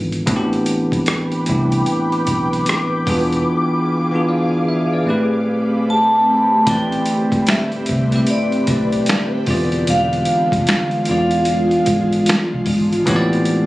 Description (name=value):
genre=R&B, neo-soul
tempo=75 BPM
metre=4/4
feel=swing 64% on 16ths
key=A minor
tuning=A4 = 441 Hz
part: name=bell-like tine electric piano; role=accompaniment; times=0.0-13.7 s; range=A2 to F5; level=-18 LUFS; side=equal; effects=none
part: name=vintage muted fingered electric bass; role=bass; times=0.0-13.7 s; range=E1 to C2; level=-24 LUFS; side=equal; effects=none
part: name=boom bap sampler-style drum kit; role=drums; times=0.1-13.7 s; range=finger snaps, hi-hat, kick drum, rim click, snare drum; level=-21 LUFS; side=equal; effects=none
part: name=ethereal airy pad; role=sustained chords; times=1.0-13.7 s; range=D3 to D6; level=-22 LUFS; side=equal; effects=ensemble chorus, built-in reverb, phaser, plate reverb
part: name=vibraphone with medium hard mallets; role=melody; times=5.9-12.2 s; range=D5 to A5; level=-19 LUFS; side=equal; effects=slapback echo, plate reverb
room=moderate studio reverb, RT60 0.7 s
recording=recorded on a phone in the room, studio reverb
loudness=-15 LUFS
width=side -18 dB against mid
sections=0.0-6.7 A section; 6.7-13.7 B section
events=none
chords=0.3 Am11; 3.1 E7b9; 5.1 Am9; 6.7 Am11; 9.5 E7b9; 13.1 Am11